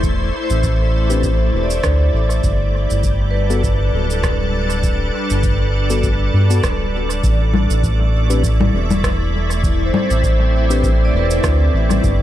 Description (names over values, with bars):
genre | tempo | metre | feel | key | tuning
ambient dub | 100 BPM | 4/4 | swing 56% on 16ths | A minor | A4 = 439 Hz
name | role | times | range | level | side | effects
soft additive organ-like pad | sustained chords | 0.0-12.2 s | G3 to D5 | -22 LUFS | left 1 dB | ensemble chorus, built-in reverb
round analog bass | bass | 0.0-12.2 s | D1 to G2 | -16 LUFS | equal | tube saturation
electronic cabasa, rim click and congas | drums | 0.0-12.2 s | none | -23 LUFS | left 3 dB | dub echo
electronic kick drum | drums | 0.0-12.2 s | none | -22 LUFS | equal | none
vibraphone with medium hard mallets | arpeggios | 0.4-12.2 s | B4 to D5 | -26 LUFS | right 2 dB | dub echo
mellow tine electric piano | stabs | 1.1-10.9 s | B3 to B4 | -27 LUFS | left 4 dB | dub echo
room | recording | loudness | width
little or no reverb | echo-heavy mix | -14 LUFS | side -12 dB against mid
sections
0.0-7.2 A section; 7.2-12.2 B section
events
none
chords
0.0 Amadd11; 2.4 G; 7.2 Amadd9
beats
| 0.03 0.63 1.23 1.83 | 2.43 3.03 3.63 4.23 | 4.83 5.43 6.03 6.63 | 7.23 7.83 8.43 9.03 | 9.63 10.23 10.83 11.43 | 12.03